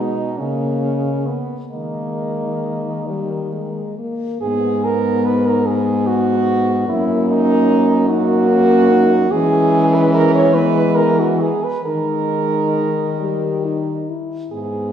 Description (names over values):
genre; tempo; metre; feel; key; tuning
classical, lyrical piece for horn quartet; 44-50 BPM (dotted quarters); 6/8; rubato; unclear; A4 = 439 Hz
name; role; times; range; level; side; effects
dark French horn; melody; 0.0-14.5 s; B3 to D#5; -23 LUFS; left 2 dB; none
warm French horn; second line; 0.0-14.9 s; A#3 to C#5; -19 LUFS; right 4 dB; none
dark French horn; accompaniment; 0.0-14.9 s; G3 to B3; -21 LUFS; left 2 dB; none
warm French horn; bass; 0.0-14.9 s; F#2 to E3; -21 LUFS; equal; none
room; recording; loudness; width
wet scoring stage reverb, RT60 1.6 s; heard from further back in the room; -15 LUFS; side -9 dB against mid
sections
0.0-4.4 A section; 4.4-14.9 B section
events
none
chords
0.4 Bmaj9/C#; 1.7 D#sus4; 3.1 D#; 4.4 G#m; 6.9 D#m/F#; 9.3 E; 11.8 D#sus4; 13.2 D#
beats
0.39 | 1.72 3.07 | 4.42 5.66 | 6.88 8.08 | 9.31 10.54 | 11.85 13.18 | 14.51